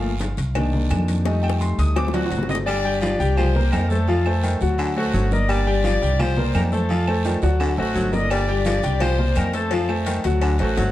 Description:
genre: latin, salsa.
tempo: 170 BPM.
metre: 4/4.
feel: straight.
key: G minor.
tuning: A4 = 441 Hz.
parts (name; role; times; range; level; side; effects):
bright concert grand piano; accompaniment; 0.0-10.9 s; Eb3 to Eb6; -25 LUFS; left 2 dB; none.
upright bass; bass; 0.0-10.9 s; G1 to F2; -22 LUFS; equal; none.
agogo bells and timbales; percussion; 0.0-10.9 s; none; -32 LUFS; right 4 dB; none.
congas; percussion; 0.0-10.9 s; none; -30 LUFS; left 1 dB; none.
cowbell and bongos; percussion; 0.2-2.6, 8.3-10.9 s; none; -32 LUFS; left 6 dB; none.
guiro; percussion; 0.2-10.9 s; none; -40 LUFS; right 7 dB; none.
claves; percussion; 0.6-10.6 s; none; -38 LUFS; right 4 dB; none.
brilliant horn section; melody; 2.2-10.9 s; F#3 to Eb5; -26 LUFS; left 1 dB; tape echo.
growling baritone saxophone; second line; 2.7-10.9 s; D3 to G3; -28 LUFS; left 1 dB; none.
room: light reverb.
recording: dark, warm production.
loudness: -18 LUFS.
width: side -14 dB against mid.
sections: 0.0-2.7 A section; 2.7-10.9 B section.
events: grand piano solo 0.0-2.7; drum fill 1.3-2.7, 7.3-8.3.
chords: 0.0 Gm7; 0.6 Cm7; 1.3 F7; 2.0 D7; 2.7 G5; 3.4 Cm7; 4.1 F7; 4.8 D7; 5.5 Gm7; 6.2 Cm7; 6.9 F7; 7.6 D7; 8.3 Gm7; 9.0 Cm7; 9.7 F7.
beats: 0.20 0.56 0.91 | 1.26 1.61 1.97 2.32 | 2.67 3.02 3.38 3.73 | 4.08 4.43 4.79 5.14 | 5.49 5.84 6.20 6.55 | 6.90 7.25 7.61 7.96 | 8.31 8.66 9.01 9.37 | 9.72 10.07 10.42 10.78.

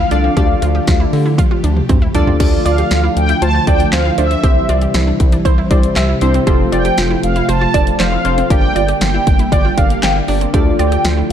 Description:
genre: synth-pop.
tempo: 118 BPM.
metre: 4/4.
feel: straight.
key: unclear.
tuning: A4 = 440 Hz.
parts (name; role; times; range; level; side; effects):
mellow synth brass; melody; 0.0-11.3 s; E5 to A5; -19 LUFS; equal; chorus, phaser, tape echo.
string machine, violas; sustained chords; 0.0-11.3 s; C3 to G4; -20 LUFS; equal; ensemble chorus.
analog pluck; arpeggios; 0.0-11.3 s; C4 to G4; -24 LUFS; right 2 dB; chorus, tape echo.
round analog bass; bass; 0.0-11.3 s; F1 to D3; -16 LUFS; equal; none.
warm analog keys; accompaniment; 0.1-11.3 s; C4 to D5; -20 LUFS; left 1 dB; chorus.
house drum kit; drums; 0.1-11.2 s; crash cymbal, handclaps, hi-hat, kick drum, snare drum, toms; -16 LUFS; equal; none.
warbly dusty pluck; second line; 2.7-10.9 s; C5 to G5; -22 LUFS; right 2 dB; chorus, phaser, tape echo.
room: light reverb, digital ambience.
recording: dark, warm production.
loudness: -11 LUFS.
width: side -9 dB against mid.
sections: 0.0-2.4 A section; 2.4-11.3 B section.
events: drum fill 1.4-2.4.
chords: 0.0 Dm; 4.4 C; 6.5 F; 8.5 Gm; 10.5 Dm.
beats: | 0.37 0.88 1.39 1.89 | 2.40 2.91 3.42 3.93 | 4.44 4.94 5.45 5.96 | 6.47 6.98 7.49 8.00 | 8.50 9.01 9.52 10.03 | 10.54 11.05.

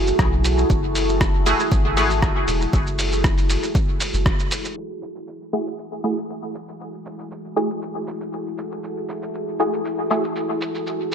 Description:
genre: dub techno.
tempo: 118 BPM.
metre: 4/4.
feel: straight.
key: F# minor.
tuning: A4 = 441 Hz.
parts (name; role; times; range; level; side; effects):
deep dark ambient pad; sustained chords; 0.0-11.1 s; E4 to A4; -26 LUFS; equal; chorus, built-in reverb, sidechain pumping.
soft dub sub bass; bass; 0.0-4.3 s; E1 to B1; -23 LUFS; equal; sidechain pumping.
lo-fi sampler-style drum kit; drums; 0.1-11.1 s; hi-hat, rim click, shaker; -28 LUFS; equal; dub echo.
electronic kick drum; drums; 0.2-4.4 s; none; -21 LUFS; equal; overdrive.
filtered dub chord stab; stabs; 1.5-2.1, 5.5-10.2 s; A3 to G#4; -24 LUFS; equal; chorus, phaser, sidechain pumping, dub echo.
room: light reverb.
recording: low-pass filter.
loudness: -19 LUFS.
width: side -8 dB against mid.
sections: 0.0-4.8 A section; 4.8-11.1 B section.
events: band accent 4.3; filter sweep 4.8-11.1.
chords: 0.0 F#m9.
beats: 0.19 | 0.70 1.21 1.72 2.23 | 2.73 3.24 3.75 4.26 | 4.77 5.28 5.78 6.29 | 6.80 7.31 7.82 8.33 | 8.84 9.34 9.85 10.36 | 10.87.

